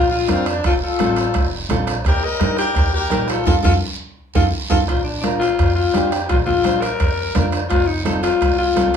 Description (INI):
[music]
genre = latin, cumbia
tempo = 170 BPM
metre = 4/4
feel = straight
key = Bb major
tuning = A4 = 442 Hz
[part]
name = breathy alto saxophone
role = melody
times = 0.0-8.9 s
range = C4 to Bb4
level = -20 LUFS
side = left 5 dB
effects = none
[part]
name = brilliant trumpet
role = second line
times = 0.0-4.8 s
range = D4 to Eb5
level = -26 LUFS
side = left 3 dB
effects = none
[part]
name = upright bass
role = bass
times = 0.0-9.0 s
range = F1 to G2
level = -22 LUFS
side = equal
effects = none
[part]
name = nylon-string guitar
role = accompaniment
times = 0.3-9.0 s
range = C4 to C5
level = -24 LUFS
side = right 4 dB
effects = none
[part]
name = bombo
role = percussion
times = 0.3-8.9 s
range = none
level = -22 LUFS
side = right 2 dB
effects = none
[part]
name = congas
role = percussion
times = 0.3-8.9 s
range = none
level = -26 LUFS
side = left 3 dB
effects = none
[part]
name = guiro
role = percussion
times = 0.3-9.0 s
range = none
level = -32 LUFS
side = right 4 dB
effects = none
[part]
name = timbales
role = percussion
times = 0.3-9.0 s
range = none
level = -30 LUFS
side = right 8 dB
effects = none
[sound]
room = moderate studio reverb, RT60 0.6 s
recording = small room ambience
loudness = -16 LUFS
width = side -7 dB against mid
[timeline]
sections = 0.0-4.9 A section; 4.9-9.0 B section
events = band accent 3.5-4.9; drum fill 4.3-4.9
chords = 0.0 Bb; 0.6 F; 2.1 Eb; 3.5 F7; 4.9 Bb; 7.7 F